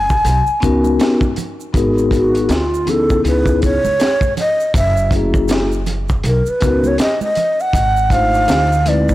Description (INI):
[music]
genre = hip hop, jazz-hop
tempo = 80 BPM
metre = 4/4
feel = swing 60% on 16ths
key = unclear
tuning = A4 = 443 Hz
[part]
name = breathy mellow long shakuhachi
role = melody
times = 0.0-9.1 s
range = F4 to G#5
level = -17 LUFS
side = right 1 dB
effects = none
[part]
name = upright bass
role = bass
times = 0.0-9.1 s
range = F#1 to D2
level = -19 LUFS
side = equal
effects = transformer saturation
[part]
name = crunchy breakbeat drum kit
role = drums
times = 0.1-9.1 s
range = hi-hat, kick drum, snare drum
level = -19 LUFS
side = equal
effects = none
[part]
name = egg shaker and congas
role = percussion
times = 0.1-9.1 s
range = none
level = -30 LUFS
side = right 8 dB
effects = none
[part]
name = vibraphone with soft mallets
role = accompaniment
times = 0.6-9.1 s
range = G#3 to B#4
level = -18 LUFS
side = left 3 dB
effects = auto-pan
[sound]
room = light reverb, studio reverb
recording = blown-out, overdriven recording, overdrive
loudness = -13 LUFS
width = side -16 dB against mid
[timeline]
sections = 0.0-1.7 A section; 1.7-9.1 B section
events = shakuhachi solo 1.7-9.1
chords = 0.2 Bmaj9; 1.7 G#m9; 2.5 Dmadd9; 3.2 C#m9; 4.7 F#9; 6.2 Bmaj9; 7.7 G#5; 8.5 Dm9